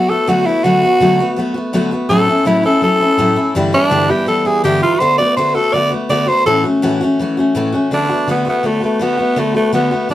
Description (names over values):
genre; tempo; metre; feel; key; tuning
rock; 165 BPM; 4/4; straight; D major; A4 = 439 Hz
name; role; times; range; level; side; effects
raspy tenor saxophone; melody; 0.0-10.1 s; A3 to D5; -14 LUFS; equal; none
picked steel-string acoustic guitar; accompaniment; 0.0-10.1 s; G2 to F#4; -16 LUFS; left 1 dB; none
room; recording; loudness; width
moderate studio reverb, RT60 0.6 s; band playing live in one room; -12 LUFS; side -13 dB against mid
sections
0.0-7.9 A section; 7.9-10.1 B section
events
tenor saxophone solo 0.0-7.9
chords
0.0 D6; 2.1 A6; 3.6 G6; 5.0 D6; 6.5 A6; 7.9 D6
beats
0.28 | 0.64 1.00 1.37 1.73 | 2.10 2.46 2.82 3.19 | 3.55 3.91 4.28 4.64 | 5.01 5.37 5.73 6.10 | 6.46 6.83 7.19 7.55 | 7.92 8.28 8.64 9.01 | 9.37 9.73 10.10